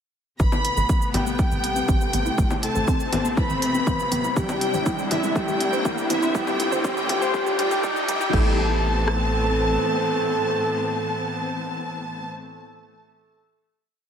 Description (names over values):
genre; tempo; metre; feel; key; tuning
melodic techno; 121 BPM; 4/4; straight; A minor; A4 = 436 Hz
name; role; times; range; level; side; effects
soft octave-layered synth lead; melody; 0.4-12.3 s; E4 to B4; -28 LUFS; right 1 dB; chorus, phaser, vintage 12-bit sampler grit, sidechain pumping, diffuse ambient delay
clear chamber violin section; second line; 0.4-12.3 s; E5 to B5; -27 LUFS; equal; sidechain pumping, ping-pong delay
warm symphonic string section; sustained chords; 0.4-12.3 s; A2 to F4; -28 LUFS; left 2 dB; sidechain pumping
warbly dusty pluck; arpeggios; 0.4-8.6 s; G3 to C5; -29 LUFS; left 1 dB; chorus, sidechain pumping, ping-pong delay
tight sequencer bass; bass; 0.4-9.8 s; E1 to A1; -27 LUFS; equal; sidechain pumping
house drum kit; drums; 0.4-9.2 s; kick drum, rim click; -23 LUFS; equal; none
house drum kit; drums; 0.4-8.4 s; congas, crash cymbal, hi-hat, shaker; -31 LUFS; left 1 dB; high-pass filter on perc, high-pass filter on hats, high-pass filter on cymbals
riser; sound effects; 3.0-8.3 s; none; -31 LUFS; right 2 dB; none
room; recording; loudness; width
wet lush hall reverb, RT60 1.9 s, digital ambience; dreamy mix soaked in reverb, high-pass filter; -20 LUFS; side -8 dB against mid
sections
0.4-8.3 build; 8.3-12.3 final chord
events
build-up 0.4-8.3; filter sweep on synth arpeggio sound 0.4-8.3; filter sweep on soft synth lead 0.4-8.3; filter sweep 0.4-8.3; riser 3.0-8.3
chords
0.4 Amadd9; 4.4 C/A; 6.3 Dm/A; 8.3 Amadd9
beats
| 0.40 0.90 1.39 1.89 | 2.38 2.88 3.37 3.87 | 4.37 4.86 5.36 5.85 | 6.35 6.84 7.34 7.84 | 8.33 8.83 9.32 9.82 | 10.32 10.81 11.31 11.80